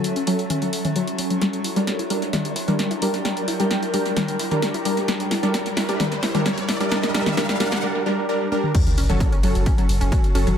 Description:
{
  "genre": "driving peak-time techno",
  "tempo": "131 BPM",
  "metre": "4/4",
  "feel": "straight",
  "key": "unclear",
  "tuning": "A4 = 440 Hz",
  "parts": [
    { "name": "supersaw stab", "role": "stabs", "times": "0.0-10.6 s", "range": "F#3 to Bb4", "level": "-25 LUFS", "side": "right 2 dB", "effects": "sidechain pumping, low-pass filter, dub echo" },
    { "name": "metallic inharmonic drone", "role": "drone", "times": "0.0-10.6 s", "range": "F#3 to F#4", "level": "-33 LUFS", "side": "right 1 dB", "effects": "chorus, built-in reverb, sidechain pumping" },
    { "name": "techno drum kit", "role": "drums", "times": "0.0-10.6 s", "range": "crash cymbal, hi-hat, ride cymbal, snare drum, toms", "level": "-26 LUFS", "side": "left 1 dB", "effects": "overdrive, dub echo" },
    { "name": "ethereal airy pad", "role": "texture", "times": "0.0-7.8 s", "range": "C#4 to G5", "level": "-30 LUFS", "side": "left 1 dB", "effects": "ensemble chorus, built-in reverb, phaser, sidechain pumping" },
    { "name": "analog pluck", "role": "riff", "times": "0.2-10.5 s", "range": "F#3 to E4", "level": "-26 LUFS", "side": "left 3 dB", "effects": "chorus, tube saturation, cassette tape, sidechain pumping, tape echo" },
    { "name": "riser and sub drop", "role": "sound effects", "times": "3.4-10.6 s", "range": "none", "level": "-30 LUFS", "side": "left 1 dB", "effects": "none" },
    { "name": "electronic kick drum", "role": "drums", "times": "8.7-10.2 s", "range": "none", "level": "-19 LUFS", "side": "equal", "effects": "overdrive" },
    { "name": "saturated sub bass", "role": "bass", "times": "9.0-10.6 s", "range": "F#1", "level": "-21 LUFS", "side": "equal", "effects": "tube saturation, sidechain pumping, low-pass filter" }
  ],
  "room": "moderate spring reverb, RT60 1.8 s",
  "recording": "echo-heavy mix",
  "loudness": "-19 LUFS",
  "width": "side -8 dB against mid",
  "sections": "0.0-8.7 A section; 8.7-10.6 B section",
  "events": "build-up 0.0-8.7; filter sweep on synth arpeggio sound 0.0-8.7; filter sweep on supersaw synth 0.0-8.7; drum fill 1.4-7.8, 8.5; riser 3.4-7.8; drop 8.7-10.6; impact 8.7-10.6",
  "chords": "0.0 F#m; 1.4 Gm; 8.7 F#m",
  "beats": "0.04 0.50 0.96 | 1.42 1.88 2.33 2.79 | 3.25 3.71 4.17 4.62 | 5.08 5.54 6.00 6.46 | 6.91 7.37 7.83 8.29 | 8.75 9.20 9.66 10.12"
}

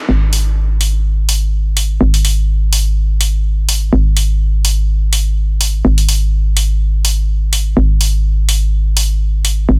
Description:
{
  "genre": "bass house",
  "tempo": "125 BPM",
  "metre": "4/4",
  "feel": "swing 55% on 16ths",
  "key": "unclear",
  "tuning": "A4 = 440 Hz",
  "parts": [
    { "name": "hollow knocking FM bass", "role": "bass", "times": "0.1-9.8 s", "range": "G#1", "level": "-15 LUFS", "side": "equal", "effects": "tube saturation" },
    { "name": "electronic hi-hat", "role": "drums", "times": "0.3-9.6 s", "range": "none", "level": "-19 LUFS", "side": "equal", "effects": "overdrive, small room ambience" }
  ],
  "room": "little or no reverb",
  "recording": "dense, heavily limited modern master",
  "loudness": "-14 LUFS",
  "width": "mono",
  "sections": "0.1-9.8 A section",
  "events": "none",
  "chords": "none",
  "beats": "| 0.09 0.57 1.05 1.53 | 2.01 2.49 2.97 3.45 | 3.93 4.41 4.89 5.37 | 5.85 6.33 6.81 7.29 | 7.77 8.25 8.73 9.21 | 9.69"
}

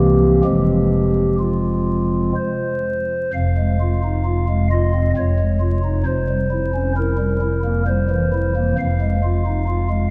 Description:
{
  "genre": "classical, chorale-style piece for pipe organ",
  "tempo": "60-68 BPM",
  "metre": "3/4",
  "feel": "rubato",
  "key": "F minor",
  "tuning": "A4 = 439 Hz",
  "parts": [
    { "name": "pipe organ, stopped flute", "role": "solo", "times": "0.0-10.1 s", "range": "F1 to F5", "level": "-19 LUFS", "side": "equal", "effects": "none" }
  ],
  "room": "wet church reverb, RT60 2.9 s",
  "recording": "vinyl crackle",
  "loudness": "-19 LUFS",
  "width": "mono",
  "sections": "0.0-3.3 A section; 3.3-10.1 B section",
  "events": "none",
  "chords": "0.4 Fm; 5.2 Dbadd9/F; 6.1 C7/F; 8.8 Fm",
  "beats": "| 0.44 1.38 2.35 | 3.33 4.26 5.16 | 6.05 6.95 7.84 | 8.77 9.67"
}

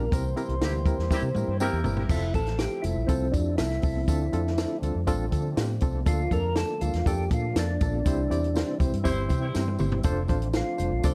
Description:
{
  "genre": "uptempo 1960s-style soul",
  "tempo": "121 BPM",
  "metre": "4/4",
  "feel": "straight",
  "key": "F major",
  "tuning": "A4 = 440 Hz",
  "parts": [
    { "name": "percussive tonewheel organ", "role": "melody", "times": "0.0-11.1 s", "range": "C4 to C5", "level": "-33 LUFS", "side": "equal", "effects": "slow rotary speaker" },
    { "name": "barky reed electric piano", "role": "accompaniment", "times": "0.0-11.1 s", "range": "C3 to D5", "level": "-35 LUFS", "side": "equal", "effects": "fast tremolo" },
    { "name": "percussive tonewheel organ", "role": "sustained chords", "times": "0.0-11.1 s", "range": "E3 to E4", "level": "-40 LUFS", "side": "equal", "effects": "none" },
    { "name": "vintage muted fingered electric bass", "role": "bass", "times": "0.0-11.1 s", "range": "F1 to D3", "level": "-31 LUFS", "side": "equal", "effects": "none" },
    { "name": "congas", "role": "percussion", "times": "0.0-11.1 s", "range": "none", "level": "-44 LUFS", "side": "equal", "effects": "none" },
    { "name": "compact cocktail drum kit", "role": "drums", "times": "0.1-11.1 s", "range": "crash cymbal, hi-hat, kick drum, snare drum, toms", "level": "-30 LUFS", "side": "equal", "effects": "none" },
    { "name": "tambourine", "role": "percussion", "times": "0.1-11.1 s", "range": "none", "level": "-50 LUFS", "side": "equal", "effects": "none" },
    { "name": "warm horn section", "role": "second line", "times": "0.6-2.0, 9.0-9.4 s", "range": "G3 to C5", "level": "-39 LUFS", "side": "equal", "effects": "tape echo" }
  ],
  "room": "studio ambience",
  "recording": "dark, warm production",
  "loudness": "-26 LUFS",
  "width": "mono",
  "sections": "0.0-2.1 A section; 2.1-11.1 B section",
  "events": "band accent 0.1-2.1, 8.1-10.1; drum fill 1.1-2.1, 9.6-10.1; tonewheel organ solo 2.1-11.1",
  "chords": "0.1 C7; 2.1 Fmaj7; 4.1 Dm7; 6.1 Bbmaj7/D; 8.1 C; 10.1 F6",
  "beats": "| 0.12 0.61 1.11 1.60 | 2.10 2.60 3.09 3.59 | 4.08 4.58 5.08 5.57 | 6.07 6.57 7.06 7.56 | 8.06 8.55 9.05 9.55 | 10.05 10.55 11.05"
}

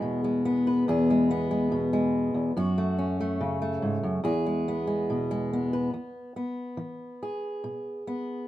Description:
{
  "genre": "acoustic folk duo or small band",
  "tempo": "71 BPM",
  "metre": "4/4",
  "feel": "straight",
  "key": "E major",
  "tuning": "A4 = 439 Hz",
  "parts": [
    { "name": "fingerpicked steel-string acoustic guitar", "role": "solo", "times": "0.0-8.5 s", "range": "E2 to B4", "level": "-25 LUFS", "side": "equal", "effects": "none" }
  ],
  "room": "moderate studio reverb, RT60 0.8 s",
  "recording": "minimal, uncompressed stereo recording",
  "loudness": "-25 LUFS",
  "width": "side -14 dB against mid",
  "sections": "0.0-5.9 A section; 5.9-8.5 B section",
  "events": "none",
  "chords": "0.0 E; 2.6 F#m; 4.2 E",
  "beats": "0.02 0.86 1.71 | 2.55 3.40 4.25 5.09 | 5.95 6.80 7.65"
}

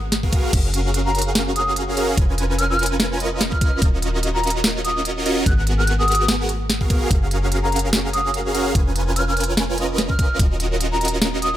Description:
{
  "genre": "future bass",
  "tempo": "146 BPM",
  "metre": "4/4",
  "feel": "swing 55% on 16ths, half-time",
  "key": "Eb minor",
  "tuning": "A4 = 440 Hz",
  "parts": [
    { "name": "warm 808-style bass", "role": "bass", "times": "0.0-11.6 s", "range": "Eb1 to Ab1", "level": "-24 LUFS", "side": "equal", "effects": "sidechain pumping" },
    { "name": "trap drum kit", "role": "drums", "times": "0.1-11.5 s", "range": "crash cymbal, hi-hat, snare drum", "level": "-23 LUFS", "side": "equal", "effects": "overdrive" },
    { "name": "supersaw chords", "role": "riff", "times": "0.2-11.6 s", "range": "Cb4 to Ab5", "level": "-23 LUFS", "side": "right 1 dB", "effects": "sidechain pumping" },
    { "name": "electronic kick drum", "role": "drums", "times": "0.2-10.5 s", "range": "none", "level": "-19 LUFS", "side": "equal", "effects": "none" },
    { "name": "mellow jazz flute", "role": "melody", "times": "1.1-11.6 s", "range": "Bb5 to Gb6", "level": "-25 LUFS", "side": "left 1 dB", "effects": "sidechain pumping, digital delay" }
  ],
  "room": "light reverb",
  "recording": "none",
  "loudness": "-17 LUFS",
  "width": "side -12 dB against mid",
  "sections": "0.0-11.6 A section",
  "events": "none",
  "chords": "0.0 Abm9; 0.5 Gbmaj9; 2.2 Db13/F; 3.8 Ebm9; 5.5 Abm9; 7.1 Gbmaj9; 8.8 Db13/F; 10.4 Ebm9",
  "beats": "0.12 | 0.53 0.94 1.35 1.76 | 2.17 2.59 3.00 3.41 | 3.82 4.23 4.64 5.05 | 5.46 5.87 6.29 6.70 | 7.11 7.52 7.93 8.34 | 8.75 9.16 9.57 9.98 | 10.39 10.80 11.22"
}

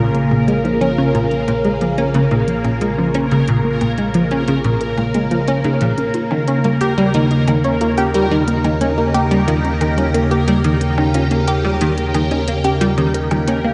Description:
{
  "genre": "ambient, sequencer-driven space music",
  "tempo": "90 BPM",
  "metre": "4/4",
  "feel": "straight",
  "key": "unclear",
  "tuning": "A4 = 438 Hz",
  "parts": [
    { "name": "phased string machine", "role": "sustained chords", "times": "0.0-13.7 s", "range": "Db3 to Ab4", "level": "-21 LUFS", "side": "equal", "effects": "ensemble chorus, phaser" },
    { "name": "warbly dusty pluck", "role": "arpeggios", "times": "0.0-13.7 s", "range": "F3 to Bb4", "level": "-26 LUFS", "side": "equal", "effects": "chorus, analog delay" },
    { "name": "plucky analog bass", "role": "riff", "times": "0.0-13.7 s", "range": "Bb2 to G4", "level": "-20 LUFS", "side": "equal", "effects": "subtle chorus, analog delay" },
    { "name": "warm sub bass", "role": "bass", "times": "0.0-13.7 s", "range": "Bb1 to Eb2", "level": "-28 LUFS", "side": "equal", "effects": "none" },
    { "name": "bubbling stepped-filter texture", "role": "texture", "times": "0.0-13.7 s", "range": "Bb4", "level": "-29 LUFS", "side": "equal", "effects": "chorus, built-in reverb" },
    { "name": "electronic hi-hat and percussion blips", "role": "percussion", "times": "0.1-13.6 s", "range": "none", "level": "-34 LUFS", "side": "equal", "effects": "analog delay" }
  ],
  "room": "wet concert hall reverb, RT60 2.0 s",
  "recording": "nothing above 10.3 kHz",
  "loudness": "-16 LUFS",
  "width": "mono",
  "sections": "0.0-13.7 A section",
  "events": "fade-in on sub bass 0.0-13.7; fade-in on drum 0.0-13.7",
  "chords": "0.0 Bbm7; 6.1 Eb7",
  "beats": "0.15 | 0.81 1.48 2.15 2.81 | 3.48 4.15 4.81 5.48 | 6.15 6.81 7.48 8.15 | 8.81 9.48 10.15 10.81 | 11.48 12.15 12.81 13.48"
}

